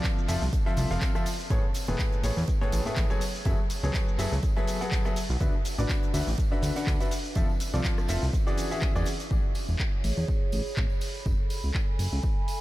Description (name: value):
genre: piano house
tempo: 123 BPM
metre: 4/4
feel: swing 55% on 16ths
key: A major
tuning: A4 = 440 Hz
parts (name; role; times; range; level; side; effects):
- bright baby grand piano; riff; 0.0-9.1 s; A2 to F#5; -32 LUFS; left 1 dB; sidechain pumping, ping-pong delay
- crisp fusion drum kit; drums; 0.0-9.3 s; hi-hat, snare drum; -48 LUFS; right 4 dB; none
- electronic kick drum; drums; 0.0-12.3 s; none; -28 LUFS; equal; none
- punchy analog drum machine; drums; 0.0-12.6 s; handclaps, hi-hat, rim click, shaker; -37 LUFS; equal; none
- tambourine; percussion; 0.0-12.6 s; none; -46 LUFS; right 2 dB; none
- fat analog bass; bass; 0.3-12.2 s; E1 to E2; -28 LUFS; equal; sidechain pumping
- warbly tape-like pad; texture; 9.8-12.6 s; G#4 to B5; -38 LUFS; right 3 dB; chorus, built-in reverb, sidechain pumping
room: light reverb, studio reverb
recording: none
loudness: -25 LUFS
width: side -16 dB against mid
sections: 0.0-9.3 A section; 9.3-12.6 B section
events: drop 0.0-9.3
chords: 0.0 Fmaj7; 1.5 Amaj9; 3.2 F#m11; 5.4 D69; 7.1 Fmaj7; 8.3 E13; 9.3 Amaj9; 11.0 F#m11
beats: 0.04 0.53 1.02 | 1.50 1.99 2.48 2.97 | 3.46 3.94 4.43 4.92 | 5.41 5.89 6.38 6.87 | 7.36 7.85 8.33 8.82 | 9.31 9.80 10.29 10.77 | 11.26 11.75 12.24